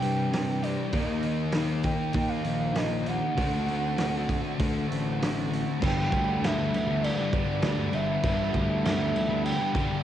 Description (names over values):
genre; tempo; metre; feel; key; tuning
rock, shoegaze and dream pop; 99 BPM; 4/4; straight; G major from 5.8 s; A4 = 438 Hz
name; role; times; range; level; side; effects
hollow clarinet-like synth lead; melody; 0.0-10.0 s; D5 to G5; -32 LUFS; right 3 dB; chorus, cassette tape, tape echo
twelve-string electric guitar; arpeggios; 0.0-10.0 s; E3 to G4; -39 LUFS; right 4 dB; none
distorted electric guitar; riff; 0.0-10.0 s; G2 to Eb4; -37 LUFS; right 1 dB; overdrive, cassette tape
overdriven semi-hollow guitar; riff; 0.0-10.0 s; C3 to B4; -37 LUFS; right 10 dB; reverse reverb, cassette tape
thick fuzz guitar; riff; 0.0-10.0 s; G2 to Eb4; -30 LUFS; left 6 dB; distortion, ensemble chorus, cassette tape
fuzz picked electric bass; bass; 0.0-9.5 s; G1 to G2; -31 LUFS; right 1 dB; overdrive
loose indie drum kit; drums; 0.0-9.9 s; crash cymbal, hi-hat, kick drum, snare drum; -31 LUFS; right 1 dB; cassette tape
room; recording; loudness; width
moderate studio ambience, RT60 0.5 s; home recording on cassette; -25 LUFS; side -11 dB against mid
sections
0.0-5.8 A section; 5.8-10.0 B section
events
none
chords
0.0 Cadd9; 0.9 Eb; 3.4 D7; 5.8 G6